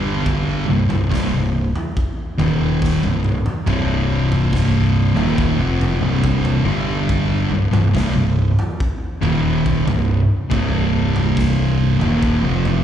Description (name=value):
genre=stoner and doom metal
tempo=70 BPM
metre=4/4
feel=straight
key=C minor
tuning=A4 = 440 Hz
part: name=thick fuzz guitar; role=riff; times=0.0-12.8 s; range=C2 to G3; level=-20 LUFS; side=left 7 dB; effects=distortion, slapback echo
part: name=thick fuzz guitar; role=riff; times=0.0-12.8 s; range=C2 to G3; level=-20 LUFS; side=right 6 dB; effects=distortion, slapback echo
part: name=growling fingered electric bass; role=bass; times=0.0-12.8 s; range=C1 to G1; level=-23 LUFS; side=equal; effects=overdrive
part: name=raw garage drum kit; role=drums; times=0.3-12.8 s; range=kick drum, snare drum, toms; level=-23 LUFS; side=equal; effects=none
room=small room ambience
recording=live gig heard through the venue's PA, club reverb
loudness=-16 LUFS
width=side -9 dB against mid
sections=0.0-12.8 A section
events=drum fill 2.8-3.7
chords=0.0 G5; 0.7 Cm; 6.7 G5; 7.5 Cm